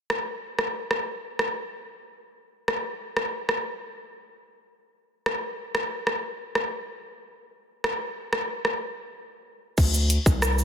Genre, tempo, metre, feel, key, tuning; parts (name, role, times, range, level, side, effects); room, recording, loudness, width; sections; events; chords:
dancehall; 93 BPM; 4/4; straight; A4 = 440 Hz
island pop drum kit; drums; 0.1-10.6 s; crash cymbal, hi-hat, kick drum, rim click, shaker; -26 LUFS; equal; soft clipping on snare
saturated sub bass; bass; 9.8-10.6 s; C2 to D2; -23 LUFS; equal
light reverb; dense, heavily limited modern master; -25 LUFS; side -8 dB against mid
0.0-9.8 A section